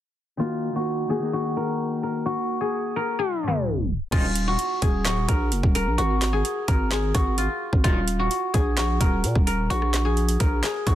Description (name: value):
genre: hip hop, trap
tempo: 129 BPM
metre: 4/4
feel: half-time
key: Eb minor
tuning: A4 = 440 Hz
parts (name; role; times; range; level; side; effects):
- guzheng; melody; 0.4-10.9 s; F4 to Bb4; -26 LUFS; left 1 dB; low-pass filter
- Celtic harp; accompaniment; 0.4-4.2 s; Eb3 to Ab4; -28 LUFS; left 2 dB; low-pass filter
- mellow brass ensemble; stabs; 4.1-4.3, 7.8-8.0 s; Bb1 to Eb3; -36 LUFS; left 1 dB; digital delay
- growling 808-style bass; bass; 4.1-10.9 s; D1 to Bb2; -24 LUFS; equal; none
- trap drum kit; drums; 4.1-10.9 s; crash cymbal, handclaps, hi-hat, kick drum, rim click, snare drum; -23 LUFS; equal; none
room: small room ambience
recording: dense, heavily limited modern master, low-pass filter, tape stop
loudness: -21 LUFS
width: side -12 dB against mid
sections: 0.4-4.1 A section; 4.1-10.9 B section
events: filter sweep 0.4-4.1; tape stop 3.2-4.1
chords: 0.4 Ebm; 2.3 Abm; 4.1 Ebm; 6.0 Gbmaj9/Ab; 7.8 Ebm; 9.7 Bb5